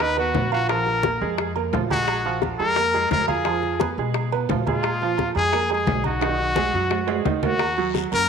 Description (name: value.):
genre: latin, salsa.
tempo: 174 BPM.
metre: 4/4.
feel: straight.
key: unclear.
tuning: A4 = 439 Hz.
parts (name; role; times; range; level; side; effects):
brilliant trumpet; melody; 0.0-8.3 s; F4 to Cb5; -23 LUFS; left 3 dB; slapback echo.
bright upright piano; accompaniment; 0.0-8.3 s; D#3 to F5; -26 LUFS; right 11 dB; none.
upright bass; bass; 0.0-8.3 s; Bb1 to Cb3; -29 LUFS; left 1 dB; none.
bongos; percussion; 0.0-8.1 s; none; -29 LUFS; left 15 dB; none.
congas; percussion; 0.0-8.3 s; none; -30 LUFS; left 3 dB; none.
timbales; percussion; 0.0-8.3 s; none; -30 LUFS; right 13 dB; none.
guiro; percussion; 7.6-8.3 s; none; -37 LUFS; left 16 dB; none.
room: light reverb, studio reverb.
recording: 1960s-style stereo with parts hard left and right.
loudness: -20 LUFS.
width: side -6 dB against mid.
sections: 0.0-8.3 A section.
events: drum fill 6.2-7.6.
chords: 0.0 Abm7 (rootless); 0.7 Bb5; 3.5 Fdim; 4.8 Bb5; 6.2 B6; 7.6 Ebm.